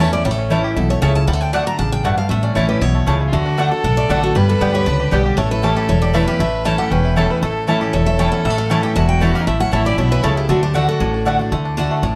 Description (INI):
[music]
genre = bluegrass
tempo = 234 BPM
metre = 4/4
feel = straight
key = unclear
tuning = A4 = 441 Hz
[part]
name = bluegrass banjo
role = melody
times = 0.0-12.2 s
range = E3 to G4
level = -28 LUFS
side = equal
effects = none
[part]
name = picked steel-string acoustic guitar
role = melody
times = 0.0-11.1 s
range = F#4 to Bb5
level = -26 LUFS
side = equal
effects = plate reverb
[part]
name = picked steel-string acoustic guitar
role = accompaniment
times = 0.0-12.2 s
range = E2 to G4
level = -21 LUFS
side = equal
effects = none
[part]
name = mandolin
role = stabs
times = 0.0-11.4 s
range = A3 to A5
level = -24 LUFS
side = equal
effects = slapback echo
[part]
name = upright bass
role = bass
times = 0.0-12.2 s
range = E1 to D2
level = -22 LUFS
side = equal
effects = none
[part]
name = clear fiddle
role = second line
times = 3.3-11.4 s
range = D4 to B4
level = -25 LUFS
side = equal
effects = none
[sound]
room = moderate studio ambience, RT60 0.5 s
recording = lossy compression artefacts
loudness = -17 LUFS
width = mono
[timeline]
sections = 0.0-11.5 A section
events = none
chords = 0.0 A; 1.3 D; 2.3 A; 3.3 D; 4.4 G; 5.4 A; 10.5 D